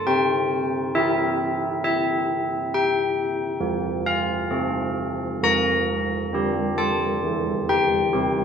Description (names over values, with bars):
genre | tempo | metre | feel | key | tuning
classical, tune for church bells | 67 BPM | 4/4 | straight | unclear | A4 = 439 Hz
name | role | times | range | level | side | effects
old church bells | solo | 0.0-8.4 s | E3 to Bb5 | -20 LUFS | equal | none
room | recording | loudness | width
moderate scoring stage reverb, RT60 1.9 s | close, detailed microphones | -20 LUFS | side -7 dB against mid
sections
0.0-8.4 A section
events
none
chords
0.1 C7; 3.6 F; 5.4 Gm7/F; 7.2 C/E